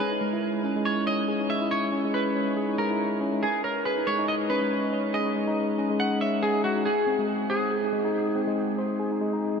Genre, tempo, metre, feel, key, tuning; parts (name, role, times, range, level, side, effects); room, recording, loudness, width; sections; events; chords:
IDM; 140 BPM; 4/4; swing 56% on 16ths; A4 = 442 Hz
semi-hollow electric guitar; melody; 0.0-9.6 s; F#4 to F#5; -28 LUFS; right 1 dB; lush chorus, tape echo
mellow tine electric piano; arpeggios; 0.0-9.6 s; G#3 to C#5; -26 LUFS; left 1 dB; ping-pong delay
wet huge ambient reverb, RT60 9.3 s; dreamy mix soaked in reverb; -24 LUFS; side -6 dB against mid
0.0-9.6 A section
0.0 C#m; 3.4 G#m; 6.9 G#